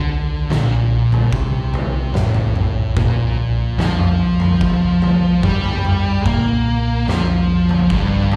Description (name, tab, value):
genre	stoner and doom metal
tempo	73 BPM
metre	4/4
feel	straight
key	unclear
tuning	A4 = 441 Hz
part	thick fuzz guitar	riff	0.0-8.4 s	G2 to Bb3	-23 LUFS	equal	distortion
part	thick fuzz guitar	riff	0.0-8.4 s	G2 to Bb3	-22 LUFS	equal	distortion
part	hollow-body short-scale fingered electric bass	bass	0.0-8.4 s	G1 to Bb2	-23 LUFS	equal	overdrive
part	oversized low-tuned drum kit	drums	0.5-8.4 s	kick drum, snare drum, toms	-23 LUFS	equal	none
room	light reverb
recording	live gig heard through the venue's PA, recital hall reverb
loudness	-17 LUFS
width	mono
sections	0.0-8.4 A section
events	none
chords	0.0 D5; 3.0 Bb5